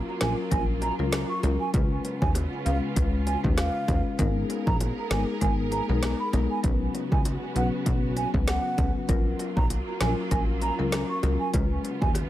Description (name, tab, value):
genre	dancehall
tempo	98 BPM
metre	4/4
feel	swing 56% on 16ths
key	unclear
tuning	A4 = 440 Hz
part	warm studio string section	sustained chords	0.0-12.3 s	C#3 to A#4	-36 LUFS	right 2 dB	sidechain pumping
part	plucky analog bass	bass	0.0-12.3 s	G#1 to D#2	-27 LUFS	equal	none
part	mellow baroque flute	melody	0.2-12.1 s	E#5 to C#6	-33 LUFS	right 4 dB	dub echo
part	marimba with medium mallets	accompaniment	0.2-12.1 s	F#3 to B4	-30 LUFS	left 4 dB	sidechain pumping, dub echo
part	afro-pop drum kit	drums	0.2-12.3 s	hi-hat, kick drum, rim click, snare drum	-27 LUFS	equal	none
part	bongos	percussion	0.8-12.3 s	none	-41 LUFS	right 2 dB	dub echo
room	studio ambience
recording	echo-heavy mix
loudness	-23 LUFS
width	side -14 dB against mid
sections	0.0-12.3 A section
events	none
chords	0.0 F#maj7/A#; 1.7 C#7; 4.2 G#madd9; 6.6 Bsus2; 9.1 F#maj7/A#; 11.5 C#7